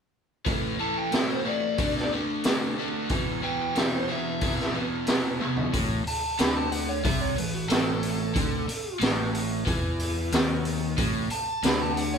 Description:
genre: blues rock power trio and southern rock.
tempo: 91 BPM.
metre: 4/4.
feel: straight.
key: unclear.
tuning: A4 = 445 Hz.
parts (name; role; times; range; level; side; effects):
overdriven electric guitar; riff; 0.5-12.2 s; E2 to D4; -28 LUFS; equal; spring reverb.
raw garage drum kit; drums; 0.5-12.1 s; hi-hat, kick drum, snare drum, toms; -27 LUFS; equal; none.
dark smooth lead guitar; melody; 0.8-12.2 s; F#4 to B5; -31 LUFS; right 1 dB; overdrive.
growling picked electric bass; bass; 5.7-12.2 s; A1 to E2; -31 LUFS; equal; overdrive.
room: light reverb.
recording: band playing live in one room.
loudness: -24 LUFS.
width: side -6 dB against mid.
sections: 0.5-5.7 A section; 5.7-12.2 B section.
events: drum fill 5.4-5.7.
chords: 0.5 A5; 1.8 D5; 3.1 E5; 5.7 A5.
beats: | 0.47 1.13 1.79 2.45 | 3.11 3.76 4.42 5.08 | 5.74 6.39 7.05 7.71 | 8.36 9.02 9.68 10.33 | 10.99 11.64.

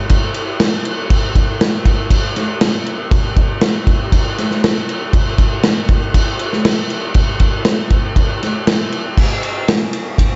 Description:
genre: rock.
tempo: 119 BPM.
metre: 4/4.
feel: straight.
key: none.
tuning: none.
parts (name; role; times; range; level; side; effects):
loose indie drum kit; drums; 0.1-10.3 s; crash cymbal, kick drum, ride cymbal, snare drum; -16 LUFS; equal; none.
room: moderate church reverb, RT60 2.4 s.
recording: nothing above 7.8 kHz.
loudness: -16 LUFS.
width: mono.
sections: 0.0-9.2 A section; 9.2-10.4 B section.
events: none.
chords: none.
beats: 0.11 0.61 | 1.12 1.62 2.12 2.63 | 3.13 3.63 4.14 4.64 | 5.14 5.65 6.15 6.66 | 7.16 7.67 8.17 8.68 | 9.18 9.69 10.19.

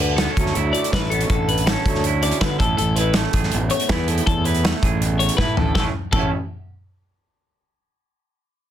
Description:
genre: math rock and midwest emo.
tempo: 162 BPM.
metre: 4/4.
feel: straight.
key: A major.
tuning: A4 = 438 Hz.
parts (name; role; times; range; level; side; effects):
electric guitar through a small old amp; accompaniment; 0.0-6.3 s; E2 to G#4; -26 LUFS; right 8 dB; none.
twelve-string electric guitar; arpeggios; 0.0-6.3 s; A4 to D5; -24 LUFS; left 6 dB; none.
fuzz fingered electric bass; bass; 0.0-6.3 s; A1 to D3; -22 LUFS; equal; overdrive.
loose indie drum kit; drums; 0.0-6.2 s; crash cymbal, hi-hat, kick drum, snare drum, toms; -22 LUFS; equal; none.
room: little or no reverb.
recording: dense, heavily limited modern master.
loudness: -17 LUFS.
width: side -10 dB against mid.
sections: 0.0-5.8 A section; 5.8-7.2 B section.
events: drum fill 5.4-5.8.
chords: 0.0 Dmaj9; 2.6 Amaj9; 5.8 Amaj7.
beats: 0.18 0.55 0.93 | 1.30 1.67 2.04 2.41 | 2.78 3.15 3.52 3.90 | 4.27 4.64 5.01 5.38 | 5.75 6.12.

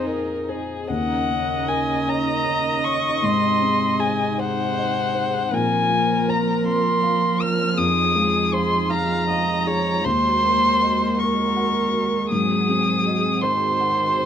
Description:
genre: neoclassical piano and strings.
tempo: 53 BPM (dotted quarters).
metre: 6/8.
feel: rubato.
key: Eb dorian.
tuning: A4 = 440 Hz.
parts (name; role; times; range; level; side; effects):
muted violin; melody; 0.0-14.3 s; Ab4 to F6; -22 LUFS; left 1 dB; slapback echo.
muted cello; second line; 0.0-14.3 s; C3 to Ab4; -27 LUFS; right 6 dB; none.
felt-muted upright piano; accompaniment; 0.0-14.3 s; Eb2 to Gb5; -26 LUFS; left 4 dB; none.
muted viola; accompaniment; 0.0-14.3 s; Eb4 to F5; -27 LUFS; right 4 dB; none.
warm analog pad; sustained chords; 0.0-14.3 s; Bb3 to Bb4; -30 LUFS; equal; chorus.
room: little or no reverb.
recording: close, detailed microphones.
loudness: -18 LUFS.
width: side -8 dB against mid.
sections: 0.9-14.3 A section.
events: none.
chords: 0.0 Fm7; 0.9 Ebm7; 3.2 Ab7; 5.5 Bbsus2; 7.8 Fm7; 10.0 Ebm7; 12.3 Ab7.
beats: | 0.89 2.06 | 3.22 4.37 | 5.52 6.66 | 7.78 8.90 | 10.04 11.17 | 12.29 13.42.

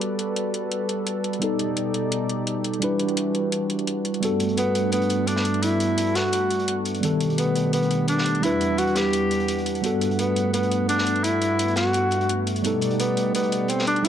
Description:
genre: liquid drum and bass.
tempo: 171 BPM.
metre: 4/4.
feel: straight.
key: G major.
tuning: A4 = 440 Hz.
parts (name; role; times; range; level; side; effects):
mellow tine electric piano; accompaniment; 0.0-14.1 s; D#3 to B4; -25 LUFS; equal; medium stereo tremolo, low-pass filter, tape echo.
warm analog pad; sustained chords; 0.0-14.1 s; E2 to F#5; -28 LUFS; right 1 dB; chorus.
electronic hi-hat; drums; 0.0-14.1 s; none; -31 LUFS; left 1 dB; none.
crunchy breakbeat drum kit; drums; 4.2-14.1 s; hi-hat, snare drum; -33 LUFS; equal; high-pass filter on hats, high-pass filter on snare, high-pass filter on room.
breathy tenor saxophone; melody; 4.6-14.1 s; B3 to G4; -24 LUFS; equal; dub echo.
room: light reverb, small room ambience.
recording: dark, warm production.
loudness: -21 LUFS.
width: side -9 dB against mid.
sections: 0.0-14.1 A section.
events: filter sweep on tine electric piano 0.0-14.1.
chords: 0.0 Gmaj9; 1.4 B7alt; 2.8 Em7; 4.2 Gmaj9; 7.0 B7alt; 8.4 Em7; 9.8 Gmaj9; 12.6 B7alt.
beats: | 0.01 0.36 0.71 1.06 | 1.42 1.77 2.12 2.47 | 2.82 3.17 3.52 3.87 | 4.22 4.57 4.92 5.28 | 5.63 5.98 6.33 6.68 | 7.03 7.38 7.73 8.08 | 8.43 8.79 9.14 9.49 | 9.84 10.19 10.54 10.89 | 11.24 11.59 11.94 12.29 | 12.64 12.99 13.35 13.70 | 14.05.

